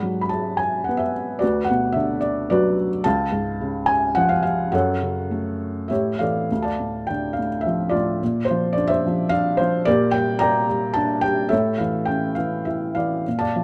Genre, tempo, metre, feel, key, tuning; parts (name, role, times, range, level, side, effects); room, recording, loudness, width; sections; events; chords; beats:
classical, lyrical solo piano; 97-113 BPM; 3/4; rubato; F# minor, D minor from 6.5 s; A4 = 440 Hz
felt-muted upright piano; solo; 0.0-13.6 s; C#2 to B5; -22 LUFS; equal
light reverb; -22 LUFS; mono
0.0-6.5 A section; 6.5-13.6 B section
0.0 G#m7b5; 1.4 Bm/D; 3.1 C#; 4.7 F#m; 5.9 A7; 6.5 Dm; 8.2 Bbadd9; 9.9 Gm/Bb; 11.5 A
0.30 0.88 | 1.42 1.96 2.50 | 3.05 3.61 4.17 | 4.73 5.30 5.90 | 6.51 7.09 7.65 | 8.21 8.77 9.32 | 9.87 10.41 10.96 | 11.52 12.08 12.67 | 13.26